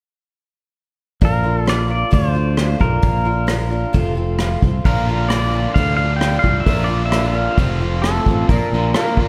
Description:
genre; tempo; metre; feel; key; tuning
folk rock and heartland rock; 132 BPM; 4/4; straight; unclear; A4 = 437 Hz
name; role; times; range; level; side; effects
pedal steel guitar; melody; 1.2-9.3 s; A4 to G5; -25 LUFS; equal; digital delay
picked twelve-string acoustic guitar; accompaniment; 1.2-9.3 s; F2 to F4; -26 LUFS; equal; slapback echo
fingered electric bass; bass; 1.2-8.9 s; F1 to D2; -22 LUFS; equal; none
soft brush drum kit; drums; 1.2-9.3 s; hi-hat, kick drum, rim click; -21 LUFS; equal; none
biting overdriven guitar; riff; 4.9-9.3 s; F2 to F4; -26 LUFS; equal; none
room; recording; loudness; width
moderate scoring stage reverb, RT60 1.5 s, small room ambience; big arena sound; -17 LUFS; mono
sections
1.2-8.5 A section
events
none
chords
1.2 Bb; 2.1 Dm; 3.0 Bb; 3.9 F; 4.9 Bb; 5.8 Dm; 6.7 Bb; 7.6 F; 8.5 Bb

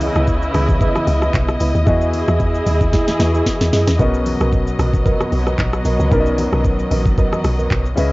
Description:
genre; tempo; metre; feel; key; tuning
amapiano; 113 BPM; 4/4; swing 55% on 16ths; B major; A4 = 441 Hz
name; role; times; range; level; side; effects
warm concert grand piano; accompaniment; 0.0-8.1 s; B2 to D#5; -24 LUFS; left 2 dB; cassette tape
muted studio string section; sustained chords; 0.0-8.1 s; C#3 to D#5; -22 LUFS; equal; sidechain pumping, cassette tape
deep mellow chord stab; stabs; 0.0-8.1 s; E4 to D#5; -25 LUFS; right 3 dB; chorus, cassette tape, analog delay
deep log drum bass; bass; 0.0-8.1 s; A#1 to F#2; -18 LUFS; equal; none
smooth R&B drum kit; drums; 0.0-8.1 s; handclaps, hi-hat, kick drum, rim click, shaker, snare drum; -19 LUFS; equal; vintage 12-bit sampler grit, cassette tape
congas; percussion; 0.0-7.7 s; none; -28 LUFS; equal; none
room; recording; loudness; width
small room ambience; home recording on cassette, nothing above 7.6 kHz; -14 LUFS; side -21 dB against mid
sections
0.0-8.1 A section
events
drum fill 2.9-4.0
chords
0.0 C#m9; 1.9 Emaj7; 4.0 Bmaj7

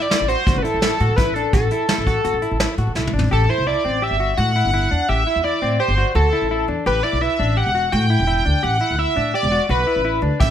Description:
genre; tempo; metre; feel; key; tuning
progressive instrumental, band music in an uneven meter; 169 BPM; 5/4; straight; A dorian; A4 = 440 Hz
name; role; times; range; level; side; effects
octave-doubled lead; melody; 0.0-10.5 s; A4 to G5; -20 LUFS; equal; chorus, plate reverb, ping-pong delay
semi-hollow electric guitar; arpeggios; 0.0-10.5 s; C4 to G4; -25 LUFS; left 2 dB; none
vintage brush drum kit; drums; 0.1-3.3, 10.4-10.5 s; hi-hat, kick drum, snare drum, toms; -20 LUFS; equal; none
upright bass; bass; 0.2-10.5 s; E1 to A2; -21 LUFS; equal; none
room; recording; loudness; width
moderate studio reverb, RT60 0.8 s; none; -16 LUFS; side -10 dB against mid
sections
0.0-3.3 A section; 3.3-10.5 B section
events
drum fill 3.0-3.3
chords
0.0 A5; 3.3 Am7; 6.9 Gadd9

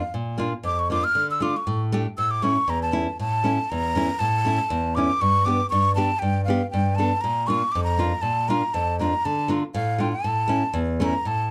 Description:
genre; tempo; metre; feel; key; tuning
klezmer; 119 BPM; 2/4; straight; A phrygian dominant; A4 = 440 Hz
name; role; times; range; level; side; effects
breathy mellow silver concert flute; melody; 0.0-11.5 s; F5 to F6; -26 LUFS; equal; none
nylon-string guitar; accompaniment; 0.1-11.5 s; E2 to A4; -26 LUFS; equal; none
room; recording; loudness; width
moderate small room reverb, RT60 0.6 s; dark, warm production; -23 LUFS; mono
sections
0.0-3.2 A section; 3.2-11.3 B section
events
flute solo 0.0-3.2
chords
0.0 Bb; 1.2 Dm; 2.2 A; 5.2 G; 7.2 Bb; 9.2 Dm; 10.3 A

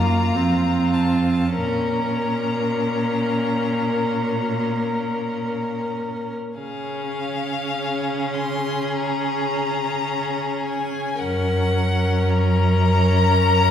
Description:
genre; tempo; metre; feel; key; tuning
classical, slow romantic movement for string quartet; 46-56 BPM; 4/4; rubato; Bb minor, Db major from 6.6 s; A4 = 440 Hz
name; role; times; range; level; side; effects
clear violin; melody; 0.0-13.7 s; F5 to C6; -26 LUFS; left 5 dB; none
clear violin; second line; 0.0-13.7 s; F4 to Bb4; -27 LUFS; left 2 dB; none
clear viola; accompaniment; 0.0-13.7 s; Bb3 to Db4; -27 LUFS; right 2 dB; none
rich cello; bass; 0.0-13.7 s; F2 to Db3; -22 LUFS; right 1 dB; none
room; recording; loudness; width
wet recital hall reverb, RT60 1.8 s; heard from further back in the room; -19 LUFS; side -9 dB against mid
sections
0.0-6.6 A section; 6.6-13.7 B section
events
none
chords
0.4 F; 1.6 Bbm; 6.6 Db; 11.2 Gb

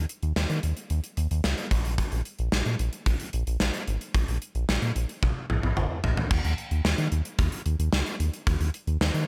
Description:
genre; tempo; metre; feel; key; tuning
synth-pop; 111 BPM; 4/4; straight; unclear; A4 = 438 Hz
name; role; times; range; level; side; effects
round analog bass; bass; 0.0-9.2 s; Ab1 to Eb3; -28 LUFS; equal; none
gated 80s drum kit; drums; 0.1-9.3 s; crash cymbal, hi-hat, kick drum, snare drum, toms; -30 LUFS; equal; none
room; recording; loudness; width
light reverb; none; -27 LUFS; mono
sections
0.0-6.3 A section; 6.3-9.3 B section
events
drum fill 5.2-6.3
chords
none

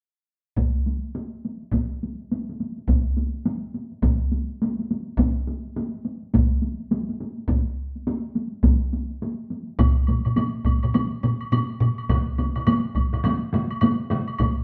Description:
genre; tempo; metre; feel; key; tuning
japanese traditional, taiko drum ensemble; 104 BPM; 4/4; swing 60% on 16ths; none; none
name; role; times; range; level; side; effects
taiko ensemble; percussion; 0.6-14.6 s; none; -28 LUFS; equal; none
taiko ensemble; percussion; 0.6-14.6 s; none; -25 LUFS; equal; none
taiko ensemble; percussion; 9.8-14.6 s; none; -27 LUFS; equal; none
woodblock; percussion; 9.8-14.5 s; none; -35 LUFS; equal; none
taiko ensemble; percussion; 12.1-14.3 s; none; -29 LUFS; equal; none
room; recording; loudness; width
wet stone room reverb, RT60 0.9 s; band playing live in one room; -24 LUFS; mono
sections
0.6-9.8 A section; 9.8-14.6 B section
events
none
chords
none

